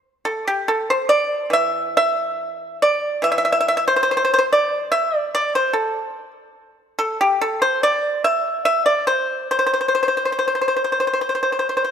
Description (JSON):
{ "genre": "chinese traditional, Chinese solo plucked strings", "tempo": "71 BPM", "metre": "4/4", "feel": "rubato", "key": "unclear", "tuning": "A4 = 441 Hz", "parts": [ { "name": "pipa", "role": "solo", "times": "0.3-11.9 s", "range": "E3 to E5", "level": "-17 LUFS", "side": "equal", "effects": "none" } ], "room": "moderate concert hall reverb, RT60 2.1 s", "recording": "none", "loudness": "-17 LUFS", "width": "side -8 dB against mid", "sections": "0.0-11.9 A section", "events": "none", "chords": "none", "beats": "0.66 1.53 2.40 | 3.25 4.08 4.91 5.73 | 6.55 7.39 8.24 9.08 | 9.94 10.80 11.67" }